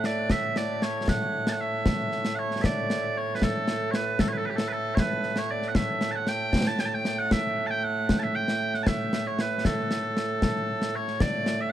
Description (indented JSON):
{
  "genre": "scottish traditional, Scottish pipe music",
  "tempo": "77 BPM (dotted quarters)",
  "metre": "6/8",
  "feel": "straight",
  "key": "A mixolydian",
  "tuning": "A4 = 440 Hz",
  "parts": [
    { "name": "loud bright bagpipes", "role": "melody", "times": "0.0-11.7 s", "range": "A2 to A5", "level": "-27 LUFS", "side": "right 2 dB", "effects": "tape echo" },
    { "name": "concert snare drum and concert bass drum", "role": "drums", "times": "0.0-11.6 s", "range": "none", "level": "-28 LUFS", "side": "left 1 dB", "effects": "none" }
  ],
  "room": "light reverb",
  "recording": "dark, warm production",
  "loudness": "-24 LUFS",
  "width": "side -12 dB against mid",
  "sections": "0.0-11.2 A section",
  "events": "none",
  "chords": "none",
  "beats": "| 0.30 1.08 | 1.86 2.64 | 3.42 4.20 | 4.98 5.76 | 6.54 7.32 | 8.09 8.87 | 9.65 10.43 | 11.21"
}